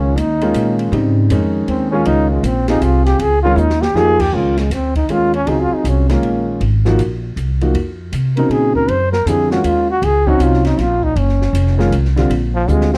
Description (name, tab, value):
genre	modal jazz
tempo	158 BPM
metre	3/4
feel	swing 65% on 8ths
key	Db major from 4.3 s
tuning	A4 = 441 Hz
part	warm trombone	second line	0.0-13.0 s	F3 to C5	-20 LUFS	equal	none
part	warm grand piano	accompaniment	0.0-13.0 s	Db3 to Ab4	-20 LUFS	equal	none
part	upright bass	bass	0.0-13.0 s	F1 to C3	-19 LUFS	equal	none
part	open jazz drum kit	drums	0.2-13.0 s	crash cymbal, hi-hat, kick drum, ride cymbal, snare drum, toms	-30 LUFS	equal	none
room	small room reverb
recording	dry, close 1970s-style studio recording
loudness	-15 LUFS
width	mono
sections	0.0-4.3 A section; 4.3-13.0 A section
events	trombone solo 0.0-13.0; drum fill 3.6-4.0, 12.7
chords	0.0 Dbmaj9; 8.9 Gbmaj7sus2; 12.3 Bb